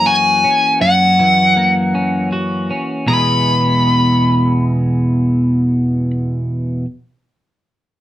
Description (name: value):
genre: rock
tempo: 80 BPM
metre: 3/4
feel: straight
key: E lydian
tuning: A4 = 440 Hz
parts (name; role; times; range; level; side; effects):
- smooth overdriven lead guitar; melody; 0.0-6.1 s; F#5 to B5; -13 LUFS; left 1 dB; none
- twelve-string electric guitar; arpeggios; 0.0-6.9 s; E2 to G#4; -15 LUFS; equal; warbly pitch drift
room: wet studio ambience, RT60 0.5 s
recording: band playing live in one room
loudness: -12 LUFS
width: side -14 dB against mid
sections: 0.0-3.1 A section; 3.1-5.3 B section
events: none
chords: 0.0 F#7; 3.1 E